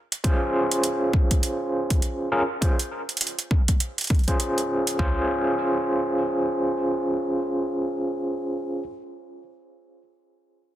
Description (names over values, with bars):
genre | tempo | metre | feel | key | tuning
glitch hop | 101 BPM | 4/4 | swing 60% on 16ths | unclear | A4 = 439 Hz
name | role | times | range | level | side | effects
electronic hi-hat | drums | 0.1-5.0 s | none | -26 LUFS | right 2 dB | overdrive
overdriven tine electric piano | stabs | 0.2-8.8 s | Db4 to C5 | -24 LUFS | equal | medium tremolo, vintage 12-bit sampler grit, sidechain pumping, low-pass filter, digital delay
pop drum kit | drums | 0.2-5.2 s | kick drum, toms | -21 LUFS | equal | overdrive
room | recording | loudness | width
light reverb | dense, heavily limited modern master | -22 LUFS | side -13 dB against mid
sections
0.0-5.0 A section; 5.0-7.4 B section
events
none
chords
0.0 Bbm9 (rootless); 5.0 Dbmaj7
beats
| 0.24 0.83 1.43 2.02 | 2.62 3.21 3.80 4.40 | 4.99 5.59 6.18 6.77